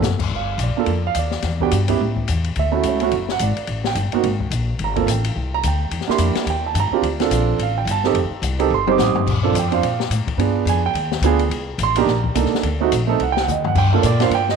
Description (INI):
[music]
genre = jazz, small-group swing and bop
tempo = 214 BPM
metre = 4/4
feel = swing 60% on 8ths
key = unclear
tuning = A4 = 439 Hz
[part]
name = warm grand piano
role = accompaniment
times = 0.0-14.6 s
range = A3 to Eb6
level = -20 LUFS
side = right 11 dB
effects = none
[part]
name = upright bass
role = bass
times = 0.0-14.6 s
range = F1 to Bb2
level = -21 LUFS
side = left 2 dB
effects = none
[part]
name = open jazz drum kit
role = drums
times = 0.0-14.5 s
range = crash cymbal, hi-hat, kick drum, ride cymbal, snare drum, toms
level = -25 LUFS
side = left 8 dB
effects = none
[sound]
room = moderate spring reverb, RT60 2.0 s, small room reverb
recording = 1960s-style stereo with parts hard left and right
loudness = -17 LUFS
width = side -6 dB against mid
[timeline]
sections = 0.3-9.3 A section; 9.3-14.6 A section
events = drum fill 8.7-9.3, 13.5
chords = 0.3 Gm7; 1.4 Em7; 2.0 A5; 2.6 Dmaj9; 3.7 Am7; 4.2 Absus2; 4.8 Gmadd9; 5.9 Em7b5; 6.5 Eb; 7.0 Dm7; 8.2 F7; 9.3 Bbmaj7; 10.4 G7b9; 11.5 Cm7; 12.6 D7b9; 13.8 Gm7